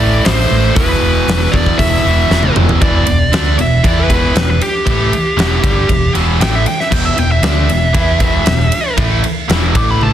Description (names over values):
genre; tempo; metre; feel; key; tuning
hard rock; 117 BPM; 4/4; straight; E minor; A4 = 440 Hz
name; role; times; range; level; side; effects
high-gain lead guitar; melody; 0.0-10.1 s; G4 to D6; -17 LUFS; equal; distortion, analog delay
biting overdriven guitar; riff; 0.0-10.1 s; E2 to E4; -19 LUFS; equal; none
high-gain distorted guitar; riff; 0.0-10.1 s; E2 to E4; -19 LUFS; equal; distortion
fingered electric bass; bass; 0.0-10.1 s; E1 to E2; -16 LUFS; equal; none
huge arena drum kit; drums; 0.2-10.1 s; crash cymbal, hi-hat, kick drum, ride cymbal, snare drum, toms; -16 LUFS; equal; none
room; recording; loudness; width
light reverb, small room ambience; dense, heavily limited modern master; -10 LUFS; side -10 dB against mid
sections
0.0-2.8 A section; 2.8-10.1 B section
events
drum fill 2.3-2.8; lead electric guitar solo 2.8-10.1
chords
0.0 Am; 0.8 E5; 2.8 Em